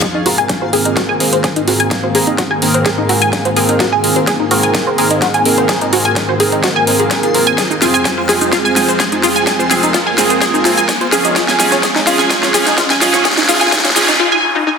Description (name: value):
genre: progressive house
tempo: 127 BPM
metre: 4/4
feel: straight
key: Ab major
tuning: A4 = 440 Hz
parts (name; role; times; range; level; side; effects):
- supersaw pad; sustained chords; 0.0-14.2 s; F2 to C5; -20 LUFS; left 1 dB; phaser, vintage 12-bit sampler grit, sidechain pumping
- tight sequenced synth; arpeggios; 0.0-14.7 s; Eb4 to Ab5; -15 LUFS; left 1 dB; chorus, phaser, sidechain pumping, digital delay
- big-room dance drum kit; drums; 0.0-14.2 s; hi-hat, shaker, snare drum; -16 LUFS; equal; overdrive, high-pass filter on snare, small room reverb, sidechain pumping on hats, high-pass filter on hats, sidechain pumping on perc, high-pass filter on perc
- electronic kick drum; drums; 0.0-13.8 s; none; -21 LUFS; equal; overdrive, high-pass filter on kick, small room reverb
- reverse cymbal, riser and noise sweep; sound effects; 0.0-14.8 s; none; -24 LUFS; equal; none
- backwards swelling texture; texture; 0.0-14.2 s; F4 to F5; -27 LUFS; left 1 dB; none
- chorused polysynth; stabs; 0.3-14.2 s; C4 to Bb4; -17 LUFS; right 3 dB; sidechain pumping, digital delay
room: wet digital room reverb, RT60 1.1 s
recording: dense, heavily limited modern master, high-pass filter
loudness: -10 LUFS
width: side -6 dB against mid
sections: 0.0-14.8 A section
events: build-up 0.0-14.8; drum fill 0.0-14.2; riser 0.0-14.2; filter sweep on analog polysynth 0.0-14.8; noise sweep 13.3-14.8; break 14.2-14.8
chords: 0.0 Abadd9; 7.6 Fm; 11.4 Db/F